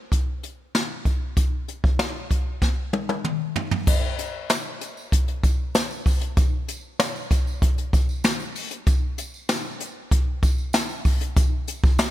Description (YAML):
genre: pop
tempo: 96 BPM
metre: 4/4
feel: straight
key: none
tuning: none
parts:
  - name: jazz brush drum kit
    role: drums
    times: 0.1-12.1 s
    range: crash cymbal, hi-hat, kick drum, snare drum, toms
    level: -21 LUFS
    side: equal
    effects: none
  - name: tambourine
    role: percussion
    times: 3.9-12.1 s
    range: none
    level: -39 LUFS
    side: right 3 dB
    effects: none
room: little or no reverb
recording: none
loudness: -21 LUFS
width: side -14 dB against mid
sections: 0.0-3.9 A section; 3.9-12.1 B section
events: drum fill 2.6-3.9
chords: none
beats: 0.12 0.74 | 1.37 1.99 2.62 3.24 | 3.87 4.49 5.12 5.74 | 6.37 6.99 7.62 8.24 | 8.87 9.49 10.12 10.74 | 11.37 11.99